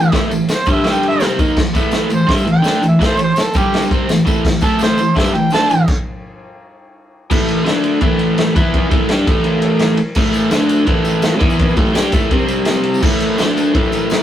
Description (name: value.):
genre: garage rock duo or trio.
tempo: 168 BPM.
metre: 4/4.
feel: straight.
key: unclear.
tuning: A4 = 439 Hz.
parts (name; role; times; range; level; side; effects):
mellow harmonica; melody; 0.0-5.9 s; G4 to A5; -18 LUFS; right 2 dB; overdrive.
overdriven electric guitar; riff; 0.0-14.2 s; G2 to G4; -15 LUFS; equal; none.
raw garage drum kit; drums; 0.1-14.2 s; crash cymbal, kick drum, ride cymbal, snare drum; -17 LUFS; equal; none.
tambourine; percussion; 0.1-5.8, 10.2-14.2 s; none; -34 LUFS; left 2 dB; none.
room: moderate studio reverb, RT60 0.6 s.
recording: rough rehearsal-room recording.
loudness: -12 LUFS.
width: side -11 dB against mid.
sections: 0.0-7.3 A section; 7.3-13.0 B section; 13.0-14.2 B section.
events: stop 5.9-7.3.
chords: 0.0 A5; 0.8 G5; 1.2 A5; 3.5 G5; 3.9 A5; 6.6 N.C.; 7.3 A5; 7.7 D5; 8.0 A5; 8.5 E5; 8.9 A5; 10.5 D5; 10.9 A5; 11.4 E5; 11.8 A5; 12.3 C5; 13.0 A5; 13.4 D5.